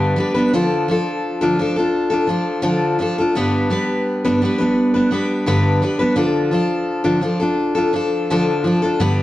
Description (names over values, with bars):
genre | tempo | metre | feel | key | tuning
rock | 85 BPM | 4/4 | straight | D dorian | A4 = 440 Hz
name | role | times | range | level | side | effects
picked steel-string acoustic guitar | solo | 0.0-9.2 s | G2 to B4 | -16 LUFS | left 1 dB | slapback echo
room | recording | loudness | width
moderate large studio reverb, RT60 0.9 s | dark, warm production | -16 LUFS | side -15 dB against mid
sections
0.0-9.2 A section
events
none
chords
0.0 G; 0.5 Dm; 3.3 G; 6.2 Dm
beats
| 0.52 1.22 1.93 2.63 | 3.34 4.04 4.75 5.46 | 6.16 6.87 7.57 8.28 | 8.98